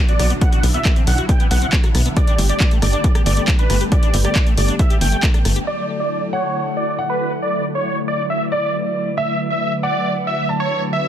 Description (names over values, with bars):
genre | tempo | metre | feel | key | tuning
uplifting trance | 137 BPM | 4/4 | straight | unclear | A4 = 442 Hz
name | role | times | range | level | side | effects
analog string pad | sustained chords | 0.0-11.1 s | B2 to B4 | -24 LUFS | left 1 dB | ensemble chorus, sidechain pumping
liquid acid bass | arpeggios | 0.0-5.6 s | A3 to G4 | -29 LUFS | left 4 dB | chorus, sidechain pumping, digital delay
big supersaw lead | melody | 0.1-11.1 s | B4 to G5 | -22 LUFS | right 1 dB | sidechain pumping, low-pass filter, digital delay
punchy analog drum machine | drums | 0.1-5.6 s | handclaps, hi-hat, rim click | -24 LUFS | equal | none
tight sequencer bass | bass | 0.2-5.6 s | G1 to B1 | -17 LUFS | equal | sidechain pumping
electronic kick drum | drums | 0.4-5.3 s | none | -16 LUFS | equal | none
dark baby grand piano | second line | 5.7-10.9 s | D5 to A5 | -25 LUFS | right 1 dB | digital delay
room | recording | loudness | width
little or no reverb | dense, heavily limited modern master | -15 LUFS | side -10 dB against mid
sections
0.0-5.7 A section; 5.7-11.1 B section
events
filter sweep on supersaw synth 5.7-11.1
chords
0.0 Bm; 2.2 Gadd9; 5.7 Dadd9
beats
| 0.41 0.85 1.29 1.73 | 2.17 2.60 3.04 3.48 | 3.92 4.36 4.79 5.23 | 5.67 6.11 6.55 6.98 | 7.42 7.86 8.30 8.74 | 9.17 9.61 10.05 10.49 | 10.93